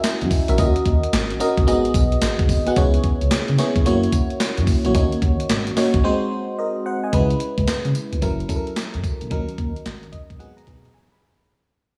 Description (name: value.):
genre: R&B, new jack swing.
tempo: 110 BPM.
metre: 4/4.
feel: swing 64% on 16ths.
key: C# dorian.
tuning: A4 = 440 Hz.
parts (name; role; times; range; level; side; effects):
FM electric piano; accompaniment; 0.0-11.5 s; F#3 to B5; -24 LUFS; equal; chorus.
gated 80s digital drum machine; drums; 0.0-10.9 s; handclaps, hi-hat, kick drum, snare drum, tambourine; -24 LUFS; equal; gated reverb, gated reverb snare.
smooth gliding synth bass; bass; 0.2-10.9 s; F#1 to C#3; -24 LUFS; equal; none.
room: moderate recital hall reverb, RT60 1.5 s.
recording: big arena sound, small room ambience.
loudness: -20 LUFS.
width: mono.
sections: 0.0-7.1 A section; 7.1-11.5 B section.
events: break 6.0-7.1, 10.9-11.5; FM electric piano fill 6.3-7.1, 9.9-11.5; fade-out 7.1-11.5.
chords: 0.0 F#7; 0.6 D#m7; 1.7 G#m7; 2.8 C#m7; 3.9 F#7; 4.9 D#m7; 6.0 G#7; 7.1 C#m7; 8.2 F#7; 9.3 D#m7; 10.4 G#m7.